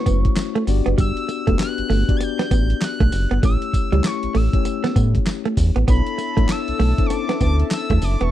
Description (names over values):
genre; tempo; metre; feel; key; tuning
R&B, new jack swing; 98 BPM; 4/4; swing 61% on 16ths; B minor; A4 = 440 Hz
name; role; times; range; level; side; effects
expressive synth lead; melody; 0.0-8.3 s; B5 to A6; -28 LUFS; left 1 dB; chorus, phaser
mellow tine electric piano; accompaniment; 0.0-8.3 s; A3 to D5; -26 LUFS; left 17 dB; none
direct-recorded clean electric guitar; riff; 0.1-8.3 s; G3 to B3; -24 LUFS; right 6 dB; lush chorus
round analog bass; bass; 0.1-8.3 s; E1 to A2; -18 LUFS; equal; none
dusty soul sampler-style drum kit; drums; 0.1-8.3 s; handclaps, hi-hat, kick drum, snare drum, tambourine; -21 LUFS; equal; none
warm analog pad; sustained chords; 5.9-8.3 s; A4 to A5; -32 LUFS; equal; chorus
room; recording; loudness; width
digital ambience; dry, close 1970s-style studio recording; -17 LUFS; side -13 dB against mid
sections
0.0-8.3 A section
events
none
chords
0.0 F#m7; 0.7 Gmaj7; 3.4 A7; 5.9 Bm11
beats
0.37 | 0.98 1.59 2.21 2.82 | 3.43 4.04 4.66 5.27 | 5.88 6.49 7.10 7.72